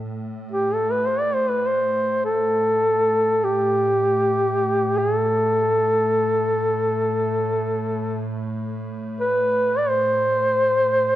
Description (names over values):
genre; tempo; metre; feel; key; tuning
caucasian folk, Caucasian lament; free time; none; none; A minor; A4 = 440 Hz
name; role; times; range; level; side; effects
evolving wavetable pad; drone; 0.0-11.2 s; A2; -28 LUFS; right 1 dB; chorus, built-in reverb
mellow duduk; melody; 0.5-11.2 s; G4 to D5; -19 LUFS; equal; none
room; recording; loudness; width
moderate concert hall reverb, RT60 2.3 s; dark, warm production; -19 LUFS; side -13 dB against mid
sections
0.1-11.2 A section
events
none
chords
none